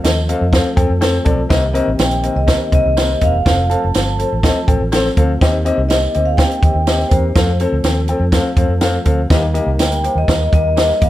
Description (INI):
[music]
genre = uptempo 1960s-style soul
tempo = 123 BPM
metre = 4/4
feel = straight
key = unclear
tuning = A4 = 445 Hz
[part]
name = warm grand piano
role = accompaniment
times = 0.0-11.1 s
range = C3 to A5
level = -19 LUFS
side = left 3 dB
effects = none
[part]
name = tonewheel organ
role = sustained chords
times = 0.0-11.1 s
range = Eb3 to Bb4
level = -26 LUFS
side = right 1 dB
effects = slow rotary speaker
[part]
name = vintage muted fingered electric bass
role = bass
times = 0.0-11.1 s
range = E1 to F2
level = -18 LUFS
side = equal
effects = none
[part]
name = compact cocktail drum kit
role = drums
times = 0.0-11.1 s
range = hi-hat, kick drum, snare drum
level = -16 LUFS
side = right 1 dB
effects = none
[part]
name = tambourine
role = percussion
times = 0.1-10.9 s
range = none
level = -29 LUFS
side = right 6 dB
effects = none
[part]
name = vibraphone with medium mallets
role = melody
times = 2.0-11.1 s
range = C5 to A5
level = -19 LUFS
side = equal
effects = none
[sound]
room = little or no reverb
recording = none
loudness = -12 LUFS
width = side -14 dB against mid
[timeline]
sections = 0.0-11.1 A section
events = grand piano fill 0.0-1.5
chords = 0.0 F; 1.5 Cm7; 3.5 F; 5.4 Eb6; 7.4 F; 9.3 Eb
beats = 0.04 0.53 1.02 | 1.51 2.00 2.48 2.97 | 3.46 3.94 4.43 4.92 | 5.41 5.89 6.38 6.87 | 7.36 7.84 8.33 8.82 | 9.31 9.79 10.28 10.77